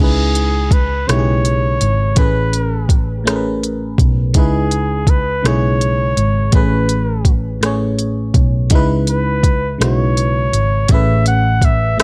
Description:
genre	slow six-eight R&B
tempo	55 BPM (dotted quarters)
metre	6/8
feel	straight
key	C# minor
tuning	A4 = 440 Hz
part	warm flugelhorn	melody	0.0-12.0 s	G#4 to F#5	-22 LUFS	equal	plate reverb, tape echo
part	FM electric piano	accompaniment	0.0-12.0 s	A2 to E5	-22 LUFS	equal	chorus, plate reverb
part	hollow-body short-scale picked electric bass	bass	0.0-12.0 s	G#1 to C#2	-20 LUFS	equal	none
part	smooth R&B drum kit	drums	0.4-12.0 s	hi-hat, kick drum, rim click	-17 LUFS	equal	vintage 12-bit sampler grit
room	little or no reverb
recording	none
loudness	-15 LUFS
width	mono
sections	0.0-12.0 A section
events	none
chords	0.0 C#m9; 2.2 Amaj9; 4.3 C#m9; 6.5 Amaj9; 8.7 C#m9; 10.9 Amaj9

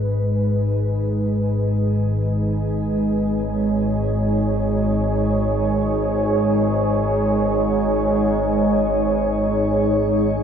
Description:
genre	dark ambient drone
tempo	free time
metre	none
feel	none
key	unclear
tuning	A4 = 441 Hz
part	dark analog pad	sustained chords	0.0-10.4 s	G#3 to C#5	-20 LUFS	right 1 dB	chorus, shimmer reverb
part	analog drone	drone	0.0-10.4 s	G#1 to G#2	-21 LUFS	equal	chorus
room	wet echo chamber reverb, RT60 2.2 s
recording	none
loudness	-18 LUFS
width	side -8 dB against mid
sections	0.0-10.4 A section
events	fade-in on analog synth pad 0.0-10.4; filter sweep on synth drone 0.0-10.4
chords	0.0 G#m

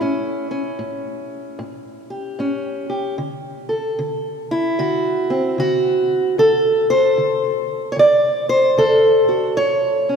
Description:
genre	acoustic country blues, solo or duo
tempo	75 BPM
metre	4/4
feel	swing 63% on 8ths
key	unclear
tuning	A4 = 441 Hz
part	fingerpicked steel-string acoustic guitar	solo	0.0-10.2 s	A2 to D5	-16 LUFS	equal	none
room	wet church reverb, RT60 3.8 s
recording	recorded in a church or concert hall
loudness	-16 LUFS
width	side -6 dB against mid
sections	0.0-10.2 A section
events	none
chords	0.0 A7; 3.2 D7; 9.6 A

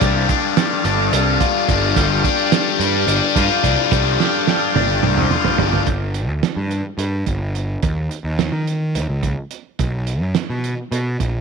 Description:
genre	psychedelic rock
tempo	214 BPM (eighths)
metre	7/8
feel	straight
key	unclear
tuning	A4 = 440 Hz
part	tonewheel organ	sustained chords	0.0-5.8 s	D4 to A5	-23 LUFS	right 9 dB	slow rotary speaker
part	biting overdriven guitar	riff	0.0-5.9 s	G3 to F4	-18 LUFS	left 13 dB	phaser
part	fuzz picked electric bass	bass	0.0-11.4 s	G1 to D#3	-20 LUFS	equal	overdrive
part	cloth-damped thuddy drum kit	drums	0.0-11.3 s	hi-hat, kick drum, snare drum, toms	-21 LUFS	right 6 dB	none
room	light reverb, small room ambience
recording	1960s-style stereo with parts hard left and right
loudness	-16 LUFS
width	side -5 dB against mid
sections	0.0-5.9 A section; 5.9-11.4 B section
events	drum fill 4.2-5.9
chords	0.0 Dm/G; 5.9 G5; 7.8 C#sus2; 9.8 B5

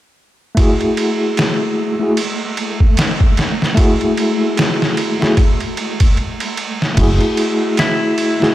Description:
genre	trip hop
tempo	75 BPM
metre	4/4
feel	swing 58% on 16ths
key	F# minor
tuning	A4 = 440 Hz
part	tine electric piano	accompaniment	0.5-8.5 s	A3 to G#4	-17 LUFS	equal	tremolo, vintage 12-bit sampler grit, low-pass filter, tape echo
part	trip hop sampler-style drum kit	drums	0.6-8.5 s	crash cymbal, kick drum, ride cymbal, snare drum	-16 LUFS	equal	overdrive
part	flickering grainy texture	texture	1.0-7.0 s	A3	-26 LUFS	equal	built-in reverb
part	deep dub fingered electric bass	bass	7.0-7.2 s	F#1	-14 LUFS	equal	none
part	clean electric guitar	melody	7.8-8.5 s	E4	-17 LUFS	left 1 dB	none
room	light reverb, digital ambience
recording	none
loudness	-13 LUFS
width	side -14 dB against mid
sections	0.6-7.0 A section; 7.0-8.5 B section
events	filter sweep on tine electric piano 0.6-7.0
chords	0.6 F#m9

